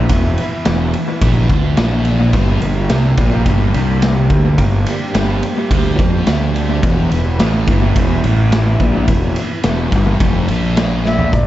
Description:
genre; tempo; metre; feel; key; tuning
psychedelic rock; 107 BPM; 4/4; straight; unclear; A4 = 440 Hz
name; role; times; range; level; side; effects
string machine, cellos; sustained chords; 0.0-11.3 s; E3 to E5; -25 LUFS; right 2 dB; ensemble chorus
thick fuzz guitar; riff; 0.0-11.3 s; E2 to F3; -18 LUFS; equal; distortion, phaser, analog delay
fuzz fingered electric bass; bass; 0.0-11.5 s; E1 to F2; -17 LUFS; equal; overdrive
raw garage drum kit; drums; 0.1-11.5 s; hi-hat, kick drum, ride cymbal, snare drum, toms; -17 LUFS; equal; analog delay
tambourine; percussion; 0.7-10.9 s; none; -42 LUFS; left 2 dB; none
silver concert flute; melody; 11.1-11.5 s; D5 to E5; -18 LUFS; left 1 dB; none
room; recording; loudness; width
light reverb, small room reverb; echo-heavy mix, nothing above 7.8 kHz; -12 LUFS; side -14 dB against mid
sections
0.0-11.3 A section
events
drum fill 11.1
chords
0.0 E5; 2.3 Gm; 6.8 E5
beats
| 0.10 0.66 1.22 1.78 | 2.34 2.90 3.47 4.03 | 4.59 5.15 5.71 6.28 | 6.84 7.40 7.96 8.52 | 9.08 9.65 10.21 10.77 | 11.33

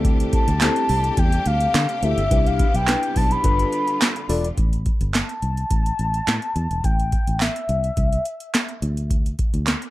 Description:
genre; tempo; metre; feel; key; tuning
early-eighties boogie funk; 106 BPM; 4/4; straight; A minor; A4 = 440 Hz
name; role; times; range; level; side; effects
tine electric piano; accompaniment; 0.0-4.5 s; C4 to D5; -26 LUFS; left 3 dB; lush chorus
bright studio string section; sustained chords; 0.0-4.6 s; C3 to G4; -31 LUFS; right 1 dB; none
fingered electric bass; bass; 0.0-9.7 s; E1 to D3; -23 LUFS; equal; none
booming analog drum machine; drums; 0.0-9.9 s; handclaps, hi-hat, kick drum, snare drum; -21 LUFS; equal; overdrive
mellow horn-like synth lead; melody; 0.3-8.8 s; E5 to B5; -24 LUFS; left 2 dB; chorus
group handclap; percussion; 0.6-9.8 s; none; -27 LUFS; right 6 dB; none
room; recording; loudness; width
little or no reverb; none; -18 LUFS; side -16 dB against mid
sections
0.0-4.6 A section; 4.6-9.9 B section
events
none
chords
0.0 D7sus4; 2.3 Cmaj7; 3.4 G7; 4.6 Am; 8.8 N.C.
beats
| 0.05 0.61 1.18 1.74 | 2.31 2.88 3.44 4.01 | 4.57 5.14 5.71 6.27 | 6.84 7.41 7.97 8.54 | 9.10 9.67

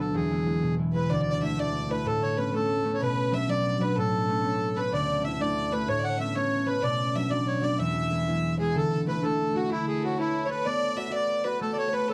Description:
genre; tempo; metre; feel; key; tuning
celtic folk, Celtic jig; 126 BPM (dotted quarters); 6/8; straight; unclear; A4 = 439 Hz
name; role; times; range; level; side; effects
accordion; melody; 0.0-12.1 s; E4 to F#5; -32 LUFS; equal; none
concert harp; accompaniment; 0.0-12.1 s; D2 to D5; -30 LUFS; equal; none
rich fiddle; second line; 0.9-12.1 s; E4 to E5; -34 LUFS; equal; none
room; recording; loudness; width
light reverb; dry, close 1970s-style studio recording; -27 LUFS; mono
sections
0.0-1.1 A section; 1.1-8.7 B section; 8.7-12.1 B section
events
none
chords
0.1 E; 1.1 Dsus2; 2.1 Aadd9; 3.0 Bm; 4.0 Aadd9; 4.9 Dsus2; 5.9 Aadd9; 6.8 Bm; 7.8 E; 8.7 Dsus2; 9.7 Aadd9; 10.7 Bm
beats
| 0.15 0.62 | 1.10 1.58 | 2.06 2.54 | 3.02 3.49 | 3.97 4.45 | 4.93 5.41 | 5.88 6.36 | 6.84 7.32 | 7.79 8.27 | 8.75 9.23 | 9.70 10.18 | 10.66 11.13 | 11.61 12.09

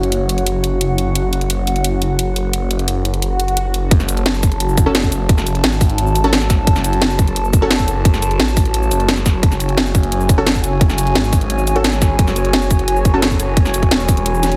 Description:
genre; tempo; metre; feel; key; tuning
dark technical drum and bass; 174 BPM; 4/4; straight; F# minor; A4 = 440 Hz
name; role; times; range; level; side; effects
dark analog pad; sustained chords; 0.0-14.6 s; F#4 to A5; -24 LUFS; equal; lush chorus, sidechain pumping
phased detuned saw bass; bass; 0.0-14.6 s; E1 to A1; -21 LUFS; equal; phaser, overdrive
drum and bass drum kit; drums; 0.0-14.6 s; hi-hat, shaker, snare drum; -21 LUFS; equal; overdrive, studio reverb
swell; sound effects; 3.3-3.9 s; none; -25 LUFS; equal; none
electronic kick drum; drums; 3.9-14.2 s; none; -16 LUFS; equal; overdrive, studio reverb
orchestra-hit-like synth stab; stabs; 4.9-14.5 s; C#4 to A4; -25 LUFS; equal; built-in reverb, delay
room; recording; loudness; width
little or no reverb; heavily compressed radio sound; -16 LUFS; mono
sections
0.0-3.9 A section; 3.9-14.6 B section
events
swell 3.3-3.9; drop 3.9-14.6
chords
0.0 F#5; 3.9 F#m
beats
0.12 0.47 0.81 | 1.15 1.50 1.84 2.19 | 2.53 2.88 3.22 3.57 | 3.91 4.26 4.60 4.95 | 5.29 5.64 5.98 6.33 | 6.67 7.02 7.36 7.71 | 8.05 8.40 8.74 9.09 | 9.43 9.78 10.12 10.46 | 10.81 11.15 11.50 11.84 | 12.19 12.53 12.88 13.22 | 13.57 13.91 14.26

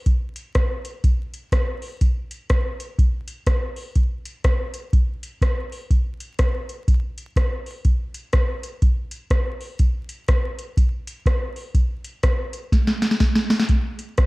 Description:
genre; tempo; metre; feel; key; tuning
ska; 123 BPM; 4/4; swing 61% on 8ths; none; none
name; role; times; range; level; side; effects
soft vintage rhythm box; drums; 0.1-14.3 s; hi-hat, kick drum, rim click, snare drum; -19 LUFS; equal; overdrive
room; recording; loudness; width
little or no reverb; dark, warm production, vinyl crackle; -20 LUFS; side -22 dB against mid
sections
0.0-13.7 A section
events
drum fill 12.7-13.7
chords
none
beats
| 0.07 0.55 1.04 1.52 | 2.01 2.50 2.98 3.47 | 3.96 4.45 4.93 5.42 | 5.90 6.39 6.88 7.36 | 7.85 8.34 8.82 9.31 | 9.80 10.28 10.77 11.26 | 11.74 12.23 12.72 13.21 | 13.69 14.18

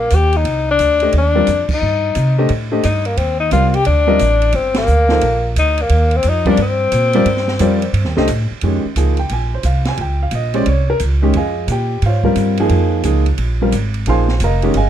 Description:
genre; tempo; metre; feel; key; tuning
modal jazz; 176 BPM; 4/4; swing 65% on 8ths; C dorian, Bb dorian from 8.6 s; A4 = 441 Hz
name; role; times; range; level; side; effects
mellow tenor saxophone; melody; 0.0-8.3 s; Bb3 to G4; -16 LUFS; left 4 dB; none
upright bass; bass; 0.0-14.9 s; F1 to C3; -16 LUFS; right 1 dB; none
open jazz drum kit; drums; 0.1-14.8 s; crash cymbal, hi-hat, kick drum, ride cymbal, snare drum; -27 LUFS; right 4 dB; none
warm baby grand piano; accompaniment; 1.0-14.9 s; Eb3 to C6; -17 LUFS; equal; none
room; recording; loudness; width
light reverb; dark, warm production; -13 LUFS; side -10 dB against mid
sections
0.0-8.6 A section; 8.6-14.9 B section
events
band accent 1.6, 4.7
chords
0.0 Cm9; 8.6 Bbm11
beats
0.11 | 0.45 0.79 1.14 1.48 | 1.82 2.16 2.50 2.84 | 3.18 3.52 3.86 4.20 | 4.54 4.88 5.22 5.56 | 5.90 6.24 6.58 6.92 | 7.26 7.60 7.94 8.28 | 8.62 8.96 9.30 9.64 | 9.98 10.32 10.66 11.00 | 11.34 11.68 12.02 12.36 | 12.70 13.04 13.38 13.72 | 14.06 14.40 14.74

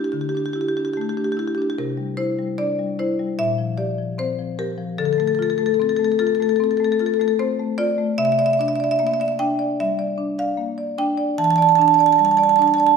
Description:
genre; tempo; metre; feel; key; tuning
classical, contemporary piece for solo marimba; 75 BPM; 4/4; rubato; unclear; A4 = 440 Hz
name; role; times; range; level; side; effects
marimba with medium hard mallets; solo; 0.0-13.0 s; Bb2 to A5; -18 LUFS; right 1 dB; none
room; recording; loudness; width
wet recital hall reverb, RT60 1.3 s; recorded in a church or concert hall; -18 LUFS; side -5 dB against mid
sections
0.0-13.0 A section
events
none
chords
0.0 Gsus2/D; 1.8 Cadd9; 3.4 Bbsus2; 5.0 Dm7; 8.2 C9; 11.4 Em7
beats
0.13 0.95 | 1.77 2.58 3.38 4.18 | 4.98 5.79 6.59 7.38 | 8.18 8.99 9.79 10.59 | 11.39 12.19

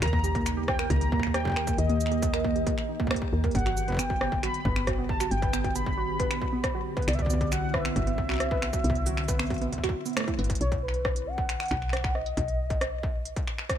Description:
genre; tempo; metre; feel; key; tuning
IDM; 136 BPM; 4/4; straight; unclear; A4 = 445 Hz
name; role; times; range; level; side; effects
warm velvety synth lead; melody; 0.0-13.5 s; B4 to B5; -33 LUFS; equal; chorus, tape echo
glassy FM pad; sustained chords; 0.0-10.6 s; D3 to G4; -35 LUFS; equal; ensemble chorus, built-in reverb, phaser
warbly dusty pluck; arpeggios; 0.0-10.5 s; A3 to B4; -32 LUFS; right 4 dB; chorus, vintage 12-bit sampler grit, ping-pong delay
woody FM bass; bass; 0.0-13.3 s; G1 to D#2; -30 LUFS; equal; none
industrial drum kit; drums; 0.0-13.8 s; cabasa, finger snaps, hi-hat, rim click; -33 LUFS; equal; none
electronic kick drum; drums; 0.1-13.8 s; none; -31 LUFS; equal; distortion
room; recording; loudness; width
light reverb; none; -25 LUFS; side -10 dB against mid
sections
0.0-10.6 A section; 10.6-13.8 B section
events
drum fill 10.4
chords
0.0 D#; 3.5 G; 7.1 Cadd9; 10.6 B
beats
| 0.02 0.46 0.90 1.34 | 1.78 2.23 2.67 3.11 | 3.55 3.99 4.43 4.87 | 5.31 5.75 6.20 6.64 | 7.08 7.52 7.96 8.40 | 8.84 9.28 9.72 10.17 | 10.61 11.05 11.49 11.93 | 12.37 12.81 13.25 13.70

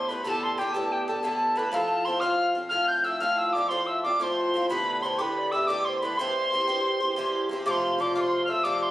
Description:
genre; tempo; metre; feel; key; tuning
celtic folk, Celtic slip jig; 121 BPM (dotted quarters); 9/8; straight; unclear; A4 = 440 Hz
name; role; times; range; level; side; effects
mellow tin whistle; melody; 0.0-8.9 s; G5 to G6; -26 LUFS; equal; none
bright reedy baroque flute; second line; 0.0-8.9 s; G4 to F5; -31 LUFS; left 1 dB; none
Irish bouzouki; accompaniment; 0.0-8.9 s; G2 to G4; -28 LUFS; equal; none
room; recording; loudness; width
moderate studio reverb, RT60 0.6 s; recorded on a phone in the room, studio reverb; -23 LUFS; side -15 dB against mid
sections
0.0-7.7 A section; 7.7-8.9 A section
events
none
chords
0.0 Gadd9; 1.7 F; 4.7 Gadd9; 6.2 C; 7.7 F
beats
| 0.25 0.74 1.24 | 1.73 2.23 2.72 | 3.22 3.71 4.21 | 4.70 5.19 5.69 | 6.18 6.68 7.17 | 7.67 8.16 8.65

